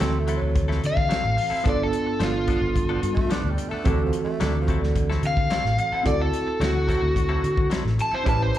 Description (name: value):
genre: straight-eighth soul blues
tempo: 109 BPM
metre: 4/4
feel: straight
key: D mixolydian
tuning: A4 = 440 Hz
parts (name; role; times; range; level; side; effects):
- growling tenor saxophone; second line; 0.0-5.1 s; D3 to D4; -33 LUFS; right 3 dB; slapback echo
- bright reed electric piano; accompaniment; 0.0-8.6 s; E3 to B4; -28 LUFS; right 6 dB; medium tremolo, slapback echo
- direct-recorded clean electric guitar; stabs; 0.0-8.4 s; F3 to B4; -34 LUFS; left 7 dB; spring reverb, slapback echo
- vintage muted fingered electric bass; bass; 0.0-8.5 s; G1 to D3; -25 LUFS; equal; none
- warm soul drum kit; drums; 0.0-8.6 s; hi-hat, kick drum, snare drum; -26 LUFS; equal; none
- overdriven electric guitar; melody; 0.9-8.5 s; F4 to A5; -25 LUFS; left 1 dB; slapback echo
room: small room reverb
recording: live gig heard through the venue's PA, club reverb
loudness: -20 LUFS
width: side -12 dB against mid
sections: 0.0-8.6 A section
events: none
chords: 0.0 D9; 1.7 G9; 3.9 D9